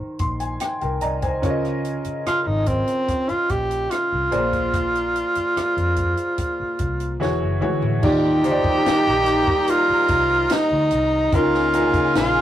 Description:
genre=lush 1970s-style soul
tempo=73 BPM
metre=4/4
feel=straight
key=Eb major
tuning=A4 = 441 Hz
part: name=clear concert grand piano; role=accompaniment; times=0.0-12.4 s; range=Db3 to C6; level=-24 LUFS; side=equal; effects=none
part: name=vintage muted fingered electric bass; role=bass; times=0.0-12.4 s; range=E1 to F2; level=-27 LUFS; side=equal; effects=none
part: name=compact cocktail drum kit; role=drums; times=0.2-12.3 s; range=crash cymbal, hi-hat, kick drum, rim click, snare drum, toms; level=-26 LUFS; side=equal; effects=none
part: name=breathy tenor saxophone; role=melody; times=2.3-12.4 s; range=C4 to G4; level=-20 LUFS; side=right 1 dB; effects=none
part: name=warm studio string section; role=second line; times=8.0-12.4 s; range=Ab4 to Bb5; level=-30 LUFS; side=left 2 dB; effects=none
part: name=warm horn section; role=stabs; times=8.0-12.4 s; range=G3 to F4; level=-28 LUFS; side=left 2 dB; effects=none
room=wet booth ambience, RT60 0.2 s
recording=rough rehearsal-room recording, warm saturation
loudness=-18 LUFS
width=side -12 dB against mid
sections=0.0-8.0 A section; 8.0-12.4 B section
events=grand piano fill 0.0-1.4; drum fill 7.2-8.0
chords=0.0 Abmaj7; 1.4 Db69; 4.3 Bb9; 7.2 E69; 8.0 Ebmaj7; 11.3 Db6

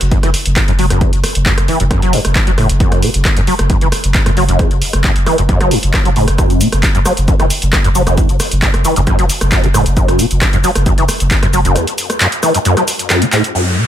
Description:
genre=driving peak-time techno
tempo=134 BPM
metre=4/4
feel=straight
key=F# minor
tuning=A4 = 437 Hz
part: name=saturated sub bass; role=bass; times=0.0-11.8 s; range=F#1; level=-16 LUFS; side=equal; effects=overdrive, sidechain pumping, low-pass filter
part: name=punchy analog drum machine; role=drums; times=0.0-13.6 s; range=crash cymbal, handclaps, hi-hat, rim click, shaker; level=-17 LUFS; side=equal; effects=overdrive, low-pass filter on hats, low-pass filter on snare, low-pass filter on cymbals, low-pass filter on perc, low-pass filter on room
part: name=overdriven acid bass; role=riff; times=0.1-13.8 s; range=E2 to F#3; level=-16 LUFS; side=equal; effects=ensemble chorus, sidechain pumping, ping-pong delay
part: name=electronic kick drum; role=drums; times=0.1-11.4 s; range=none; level=-14 LUFS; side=equal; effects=none
part: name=downlifter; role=sound effects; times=13.5-13.9 s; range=none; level=-17 LUFS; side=equal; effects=none
room=little or no reverb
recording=none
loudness=-10 LUFS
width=side -11 dB against mid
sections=0.0-13.5 A section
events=drum fill 13.3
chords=none

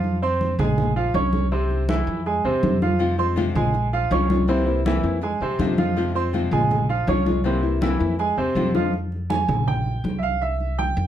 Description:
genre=latin, Cuban son and guajira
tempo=162 BPM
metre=4/4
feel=straight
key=F harmonic minor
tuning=A4 = 440 Hz
part: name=bright grand piano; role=arpeggios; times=0.0-11.1 s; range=C3 to Db6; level=-24 LUFS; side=right 3 dB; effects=none
part: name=upright bass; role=bass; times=0.0-11.1 s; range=Bb1 to F2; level=-25 LUFS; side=equal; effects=none
part: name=congas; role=percussion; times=0.0-11.1 s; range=none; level=-25 LUFS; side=equal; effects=none
part: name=nylon-string guitar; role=accompaniment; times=3.0-8.9 s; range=C3 to F4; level=-25 LUFS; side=left 6 dB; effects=none
room=light reverb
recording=dark, warm production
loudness=-19 LUFS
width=side -10 dB against mid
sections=0.0-8.9 A section; 8.9-11.1 B section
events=grand piano solo 8.9-11.1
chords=0.0 Fm; 0.8 Bbm7; 1.5 C; 2.3 Fm; 3.7 Bbm7; 4.5 C7; 5.2 Fm; 6.7 Bbm7; 7.4 C7; 8.2 Fm; 9.7 C7(no3)/Bb; 10.4 C

